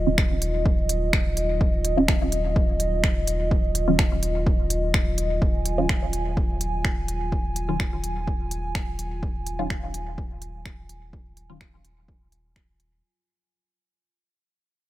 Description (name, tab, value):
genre	dub techno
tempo	126 BPM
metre	4/4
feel	straight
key	Eb minor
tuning	A4 = 440 Hz
part	dark analog pad	sustained chords	0.0-13.0 s	Gb3 to Ab5	-29 LUFS	right 1 dB	wide subtle chorus, sidechain pumping
part	soft dub sub bass	bass	0.0-13.0 s	Eb1	-28 LUFS	equal	sidechain pumping
part	filtered dub chord stab	stabs	0.1-11.6 s	Eb3 to F4	-26 LUFS	right 1 dB	phaser, sidechain pumping, dub echo
part	deep house drum kit	drums	0.2-12.9 s	finger snaps, hi-hat	-28 LUFS	equal	none
part	electronic kick drum	drums	0.2-12.7 s	none	-24 LUFS	equal	none
room	little or no reverb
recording	none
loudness	-22 LUFS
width	side -15 dB against mid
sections	0.0-13.0 A section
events	filter sweep on synth stab 0.0-13.0; fade-out 5.4-13.0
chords	0.0 Ebmadd9